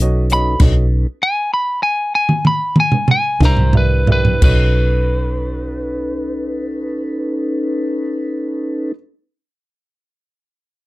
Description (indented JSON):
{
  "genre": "slow blues",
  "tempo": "58-67 BPM (dotted quarters)",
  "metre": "12/8",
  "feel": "straight",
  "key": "B mixolydian",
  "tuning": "A4 = 440 Hz",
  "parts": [
    { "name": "dark upright piano", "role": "accompaniment", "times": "0.0-8.9 s", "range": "F#4 to E5", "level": "-28 LUFS", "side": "right 3 dB", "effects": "none" },
    { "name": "mellow tonewheel organ", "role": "sustained chords", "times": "0.0-8.9 s", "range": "C#4 to C5", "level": "-22 LUFS", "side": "left 1 dB", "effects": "slow rotary speaker" },
    { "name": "vintage muted fingered electric bass", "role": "bass", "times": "0.0-8.9 s", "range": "B1 to C2", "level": "-16 LUFS", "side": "equal", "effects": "none" },
    { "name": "compact cocktail drum kit", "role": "drums", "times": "0.0-4.6 s", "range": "crash cymbal, hi-hat, kick drum, snare drum, toms", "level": "-14 LUFS", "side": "right 1 dB", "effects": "none" },
    { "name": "lightly driven lead guitar", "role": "melody", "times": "0.3-8.9 s", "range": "B4 to B5", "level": "-18 LUFS", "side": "equal", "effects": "none" }
  ],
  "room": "little or no reverb",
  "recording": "none",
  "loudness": "-14 LUFS",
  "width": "side -19 dB against mid",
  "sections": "0.0-4.4 A section; 4.4-8.6 B section",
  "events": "slowing down 0.0-4.4; lead electric guitar solo 0.0-4.4; drum fill 0.6-4.4",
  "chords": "0.0 B9; 3.4 C9; 4.4 B9",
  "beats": "| 0.60 1.51 2.44 3.41 | 4.42 5.46 6.50 7.54"
}